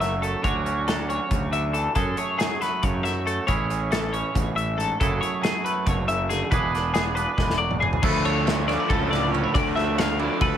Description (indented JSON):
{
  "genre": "math rock and midwest emo",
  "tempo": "276 BPM (eighths)",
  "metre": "7/8",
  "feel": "straight",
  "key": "unclear",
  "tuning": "A4 = 440 Hz",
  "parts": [
    { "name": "twangy electric guitar", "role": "accompaniment", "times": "0.0-10.6 s", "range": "F#2 to A4", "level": "-28 LUFS", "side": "right 7 dB", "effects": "none" },
    { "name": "twelve-string electric guitar", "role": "arpeggios", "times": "0.0-10.6 s", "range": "G#4 to F5", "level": "-27 LUFS", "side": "left 4 dB", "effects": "analog chorus" },
    { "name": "fuzz fingered electric bass", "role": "bass", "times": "0.0-10.6 s", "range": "E1 to F#2", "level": "-28 LUFS", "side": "equal", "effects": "overdrive" },
    { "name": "loose indie drum kit", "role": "drums", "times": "0.0-10.5 s", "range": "crash cymbal, hi-hat, kick drum, ride cymbal, snare drum, toms", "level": "-27 LUFS", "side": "equal", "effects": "none" },
    { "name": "raw garage guitar", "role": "riff", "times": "8.0-10.6 s", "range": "D3 to A4", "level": "-27 LUFS", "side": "left 1 dB", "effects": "overdrive" }
  ],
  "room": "light reverb",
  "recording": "none",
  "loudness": "-21 LUFS",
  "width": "side -9 dB against mid",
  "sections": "0.0-8.0 A section; 8.0-10.6 B section",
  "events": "drum fill 7.4-8.0",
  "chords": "0.4 Dmaj7; 2.0 F#m9; 3.5 Amaj7; 5.0 F#m9; 6.5 E7; 8.0 Dmadd9",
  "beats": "0.00 0.22 | 0.44 0.66 0.87 1.09 1.31 1.52 1.74 | 1.96 2.18 2.39 2.61 2.83 3.04 3.26 | 3.48 3.70 3.91 4.13 4.35 4.57 4.78 | 5.00 5.22 5.43 5.65 5.87 6.08 6.30 | 6.52 6.74 6.95 7.17 7.38 7.60 7.82 | 8.04 8.25 8.47 8.68 8.90 9.12 9.33 | 9.55 9.77 9.98 10.20 10.41"
}